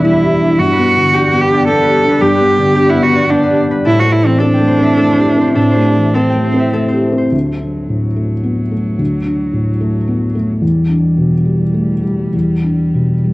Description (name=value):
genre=neoclassical piano and strings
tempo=99-112 BPM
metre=3/4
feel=rubato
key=unclear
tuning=A4 = 439 Hz
part: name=warm cello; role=second line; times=0.0-13.3 s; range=F#3 to A4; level=-15 LUFS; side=right 2 dB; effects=cassette tape, plate reverb
part: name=felt-muted upright piano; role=accompaniment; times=0.0-13.3 s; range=D2 to G4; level=-13 LUFS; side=left 1 dB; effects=cassette tape
part: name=ethereal airy pad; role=sustained chords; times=0.0-7.3 s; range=G3 to E5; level=-23 LUFS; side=left 1 dB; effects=none
part: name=concert harp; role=arpeggios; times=0.0-10.6 s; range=D4 to G5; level=-20 LUFS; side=left 2 dB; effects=cassette tape, analog delay, plate reverb
room=moderate studio reverb, RT60 0.6 s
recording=home recording on cassette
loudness=-11 LUFS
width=side -20 dB against mid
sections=0.0-7.3 A section; 7.3-13.3 B section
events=none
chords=0.0 Em7; 0.6 Gmaj7; 3.9 Am7; 7.3 D; 10.6 Em7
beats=0.05 | 0.59 1.14 1.68 | 2.22 2.76 3.30 | 3.86 4.41 4.98 | 5.56 6.16 6.75 | 7.33 7.89 8.45 | 8.99 9.54 10.09 | 10.62 11.17 11.74 | 12.33 12.94